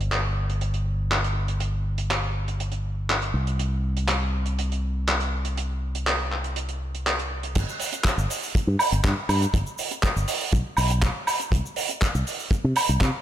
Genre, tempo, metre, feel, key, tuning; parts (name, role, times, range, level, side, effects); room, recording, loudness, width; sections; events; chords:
nu-disco, nu disco; 121 BPM; 4/4; straight; G major; A4 = 440 Hz
fingered electric bass with an envelope filter; bass; 0.0-13.1 s; G1 to C3; -25 LUFS; equal
damped 70s drum kit; drums; 0.0-13.1 s; crash cymbal, handclaps, hi-hat, shaker, woodblock; -26 LUFS; right 1 dB; low-pass filter on hats, studio reverb, low-pass filter on cymbals, low-pass filter on snare, low-pass filter on perc, low-pass filter on room
kick drum; drums; 7.6-13.1 s; -23 LUFS; equal; studio reverb
light reverb; -22 LUFS; side -11 dB against mid
0.0-7.6 A section; 7.6-13.2 B section
drop 7.6-13.2